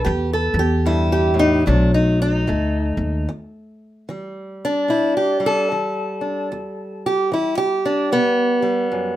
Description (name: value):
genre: acoustic country blues, solo or duo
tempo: 74 BPM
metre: 4/4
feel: swing 60% on 8ths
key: E minor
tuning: A4 = 435 Hz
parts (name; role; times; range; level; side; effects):
- fingerpicked acoustic archtop guitar; melody; 0.0-9.2 s; E2 to B4; -18 LUFS; equal; none
- upright bass; bass; 0.1-3.3 s; B1 to E2; -19 LUFS; equal; none
room: moderate small room reverb, RT60 0.5 s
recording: none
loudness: -17 LUFS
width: side -13 dB against mid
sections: 0.0-3.3 A section; 3.3-9.2 A section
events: none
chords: 0.0 Em; 1.7 B7#9; 3.3 Em7